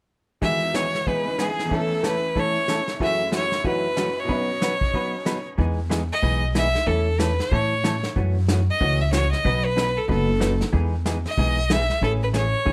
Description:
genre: country, western swing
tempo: 186 BPM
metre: 4/4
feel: swing 62% on 8ths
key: E major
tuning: A4 = 440 Hz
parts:
  - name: bright violin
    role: melody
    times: 0.4-12.7 s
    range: G#4 to E5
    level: -26 LUFS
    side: equal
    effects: plate reverb
  - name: tack piano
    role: accompaniment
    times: 0.4-5.6 s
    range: E2 to B4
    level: -33 LUFS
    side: equal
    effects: none
  - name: vintage hollow-body jazz guitar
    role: accompaniment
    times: 0.4-12.7 s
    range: F#2 to B4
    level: -30 LUFS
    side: equal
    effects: none
  - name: vintage brush drum kit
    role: drums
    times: 0.4-12.7 s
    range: brushed snare drum, hi-hat, kick drum, snare drum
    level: -30 LUFS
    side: equal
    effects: none
  - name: upright bass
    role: bass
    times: 5.6-12.7 s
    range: E1 to A2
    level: -25 LUFS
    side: equal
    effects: none
room: moderate studio reverb, RT60 0.8 s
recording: none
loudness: -23 LUFS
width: mono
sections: 0.4-5.6 A section; 5.6-12.7 B section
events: none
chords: 0.4 Emaj7; 1.7 A/E; 3.0 F#m7; 4.3 Badd9; 5.6 Emaj7; 6.9 A/E; 8.2 F#m7; 9.4 Badd9; 10.7 Emaj7; 12.0 Amaj7

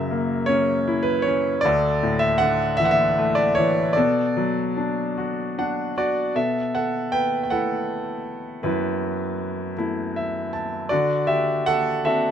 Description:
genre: classical, lyrical solo piano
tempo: 52 BPM (dotted quarters)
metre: 6/8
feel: rubato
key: B minor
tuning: A4 = 440 Hz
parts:
  - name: bright grand piano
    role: solo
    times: 0.0-12.3 s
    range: D2 to A5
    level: -20 LUFS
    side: equal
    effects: none
room: light reverb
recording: close, detailed microphones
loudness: -20 LUFS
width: side -9 dB against mid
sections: 0.0-6.3 A section; 6.3-12.3 B section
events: grand piano fill 5.2-6.3, 9.8-10.9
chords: 0.0 F#7; 1.6 Dsus2; 4.0 Bm7; 6.3 B7sus4; 10.9 D7

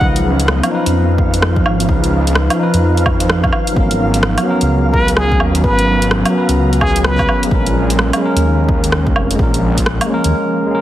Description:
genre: future garage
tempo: 128 BPM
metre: 4/4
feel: swing 62% on 16ths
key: G# dorian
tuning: A4 = 437 Hz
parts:
  - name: trumpet with plunger mute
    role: melody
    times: 0.0-0.1, 4.9-7.4 s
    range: G#4 to B4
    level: -20 LUFS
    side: equal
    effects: vintage 12-bit sampler grit, tape echo
  - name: tine electric piano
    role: accompaniment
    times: 0.0-10.8 s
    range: E#3 to B4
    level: -18 LUFS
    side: left 1 dB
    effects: sidechain pumping, analog delay
  - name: ethereal airy pad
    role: sustained chords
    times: 0.0-10.3 s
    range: E#3 to A#5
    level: -22 LUFS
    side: right 1 dB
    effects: ensemble chorus, built-in reverb, phaser, sidechain pumping
  - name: swelling detuned saw bass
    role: bass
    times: 0.0-10.3 s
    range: E#1 to E#2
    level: -16 LUFS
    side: equal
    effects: tube saturation, sidechain pumping
  - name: electronic kick drum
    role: drums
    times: 0.0-9.8 s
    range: none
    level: -18 LUFS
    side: equal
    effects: studio reverb
  - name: flickering grainy texture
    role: texture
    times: 0.0-10.3 s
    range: E#5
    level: -26 LUFS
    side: right 2 dB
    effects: built-in reverb
  - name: deep house drum kit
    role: drums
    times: 0.2-10.3 s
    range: hi-hat, rim click, woodblock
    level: -18 LUFS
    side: right 1 dB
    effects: studio reverb
room: moderate lush hall reverb, RT60 1.6 s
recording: heavily compressed radio sound, multiband compression, vinyl crackle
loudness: -12 LUFS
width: side -13 dB against mid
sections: 0.0-10.8 A section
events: none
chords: 0.0 C#9; 3.8 G#m11; 7.5 A#m7

